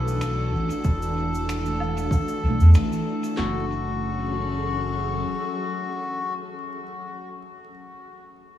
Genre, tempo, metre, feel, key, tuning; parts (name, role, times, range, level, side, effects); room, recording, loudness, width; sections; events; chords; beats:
ambient dub; 95 BPM; 4/4; swing 55% on 16ths; F# minor; A4 = 439 Hz
melodica; melody; 0.0-6.3 s; F#4 to A4; -30 LUFS; left 4 dB; tape echo
soft additive organ-like pad; sustained chords; 0.0-6.7 s; E3 to E5; -31 LUFS; left 1 dB; ensemble chorus, built-in reverb
handpan; arpeggios; 0.0-6.3 s; A3 to A4; -34 LUFS; right 1 dB; tape echo
soft dub sub bass; bass; 0.0-5.2 s; E1 to E2; -22 LUFS; equal
cabasa, finger snaps and woodblock; drums; 0.1-3.4 s; -39 LUFS; equal; dub echo
deep house drum kit; drums; 0.8-3.5 s; handclaps, kick drum, snare drum; -25 LUFS; equal; overdrive
light reverb, small room ambience; echo-heavy mix, vinyl crackle; -22 LUFS; side -12 dB against mid
0.0-3.4 A section; 3.4-5.9 B section
0.0 E9sus4; 3.4 F#m7
0.22 | 0.85 1.48 2.11 2.74 | 3.38 4.01 4.64 5.27